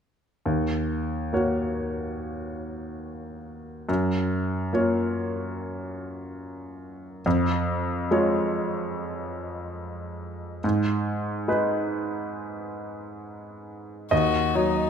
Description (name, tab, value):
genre	neoclassical piano and strings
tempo	71 BPM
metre	4/4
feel	rubato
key	unclear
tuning	A4 = 441 Hz
part	bright baby grand piano	accompaniment	0.5-14.9 s	D#2 to D#5	-25 LUFS	equal	none
part	warm violin	melody	14.1-14.9 s	D#4 to F#4	-25 LUFS	left 8 dB	none
room	moderate scoring stage reverb, RT60 2.0 s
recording	minimal, uncompressed stereo recording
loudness	-24 LUFS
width	side -7 dB against mid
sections	0.5-14.1 A section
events	none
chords	0.5 D#m7; 3.9 F#maj7; 7.3 C#/E#; 10.6 G#m; 14.1 D#m7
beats	| 0.46 1.34 2.19 3.03 | 3.88 4.73 5.58 6.41 | 7.25 8.10 8.94 9.78 | 10.63 11.49 12.35 13.23 | 14.12